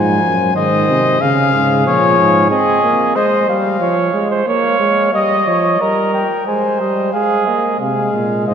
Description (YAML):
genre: classical, imitative canzona for brass ensemble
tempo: 90 BPM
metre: 4/4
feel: straight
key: unclear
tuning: A4 = 439 Hz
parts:
  - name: mellow trumpet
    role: melody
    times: 0.0-8.5 s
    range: Db5 to Ab5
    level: -17 LUFS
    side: left 6 dB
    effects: none
  - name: warm flugelhorn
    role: second line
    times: 0.0-8.5 s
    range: Ab4 to Eb5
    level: -17 LUFS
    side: right 3 dB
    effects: none
  - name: clear trombone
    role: accompaniment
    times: 0.0-8.5 s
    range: Db3 to C4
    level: -19 LUFS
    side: right 2 dB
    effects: none
  - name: mellow euphonium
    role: bass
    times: 0.0-2.5, 7.8-8.5 s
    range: Gb2 to Db3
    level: -20 LUFS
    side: right 2 dB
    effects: none
room: wet church reverb, RT60 3.7 s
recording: nothing above 8.0 kHz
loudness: -12 LUFS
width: side -8 dB against mid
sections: 0.0-7.8 A section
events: none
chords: 0.0 Ab; 1.2 Db; 2.5 Ab; 3.8 Db/F; 5.1 Eb; 6.5 Ab